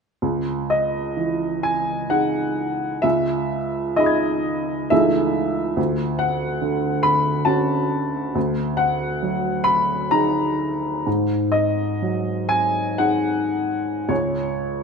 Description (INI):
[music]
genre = classical, impressionist solo piano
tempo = 50-72 BPM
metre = 3/4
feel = rubato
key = unclear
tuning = A4 = 440 Hz
[part]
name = warm baby grand piano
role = solo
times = 0.2-14.8 s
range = C#2 to G#6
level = -19 LUFS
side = equal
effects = none
[sound]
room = wet recital hall reverb, RT60 1.7 s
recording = close, detailed microphones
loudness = -19 LUFS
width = side -5 dB against mid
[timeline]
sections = 0.2-14.8 A section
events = none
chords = 0.2 C#madd9; 3.0 Emaj7/C#; 4.9 Amaj7#11/C#; 5.8 Dmaj7; 8.4 F#69/D; 11.1 G#5; 14.1 N.C.